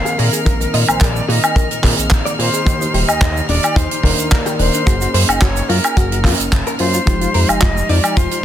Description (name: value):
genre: nu-disco, nu disco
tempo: 109 BPM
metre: 4/4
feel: straight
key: unclear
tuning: A4 = 440 Hz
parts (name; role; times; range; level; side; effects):
- jazz flute; melody; 0.0-8.4 s; Bb4 to F5; -23 LUFS; left 1 dB; tape echo
- overdriven reed electric piano; accompaniment; 0.0-8.4 s; Eb3 to D5; -22 LUFS; equal; none
- clear studio violin section; sustained chords; 0.0-8.4 s; Eb4 to F6; -26 LUFS; left 2 dB; sidechain pumping
- direct-recorded clean electric guitar; riff; 0.1-8.4 s; D4 to Bb5; -24 LUFS; left 3 dB; ensemble chorus
- tight funk drum kit; drums; 0.1-8.4 s; handclaps, hi-hat, shaker, woodblock; -19 LUFS; right 2 dB; none
- chorused synth bass; bass; 0.2-8.3 s; Eb1 to Bb2; -19 LUFS; equal; none
- kick drum; drums; 0.5-8.3 s; none; -16 LUFS; equal; none
room: small room ambience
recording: dense, heavily limited modern master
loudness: -13 LUFS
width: side -11 dB against mid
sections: 0.0-8.4 A section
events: none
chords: 0.2 Bb9sus4; 2.7 Ebmaj7; 4.9 Gbmaj7; 7.1 Fm9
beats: | 0.46 1.01 1.56 2.11 | 2.66 3.21 3.76 4.32 | 4.87 5.42 5.97 6.52 | 7.07 7.62 8.17